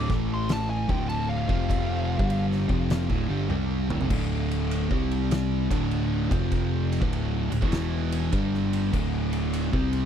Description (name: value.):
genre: stoner and doom metal.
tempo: 100 BPM.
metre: 4/4.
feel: swing 66% on 8ths.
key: D minor.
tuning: A4 = 439 Hz.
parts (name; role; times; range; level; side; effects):
fuzz lead guitar; melody; 0.0-2.5 s; F5 to D6; -34 LUFS; left 1 dB; distortion, tape echo.
biting overdriven guitar; riff; 0.0-10.1 s; D2 to C4; -34 LUFS; left 1 dB; none.
thick fuzz guitar; riff; 0.0-10.1 s; D2 to C4; -30 LUFS; left 11 dB; distortion.
thick fuzz guitar; riff; 0.0-10.1 s; D2 to C4; -30 LUFS; right 9 dB; distortion.
picked electric bass; bass; 0.0-10.1 s; D1 to C2; -29 LUFS; equal; tube saturation.
oversized low-tuned drum kit; drums; 0.1-10.0 s; crash cymbal, kick drum, ride cymbal, snare drum, toms; -30 LUFS; equal; none.
room: small room reverb.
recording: none.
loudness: -23 LUFS.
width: side -8 dB against mid.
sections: 0.0-4.1 A section; 4.1-10.1 B section.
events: lead electric guitar solo 0.0-4.1; drum fill 3.5-4.1.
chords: 0.1 A5; 0.8 D5; 1.4 F5; 2.1 Dm; 4.1 D5; 4.9 C5; 5.6 D5; 6.2 F5; 7.0 D5; 7.6 E5; 8.3 G5; 8.9 D5.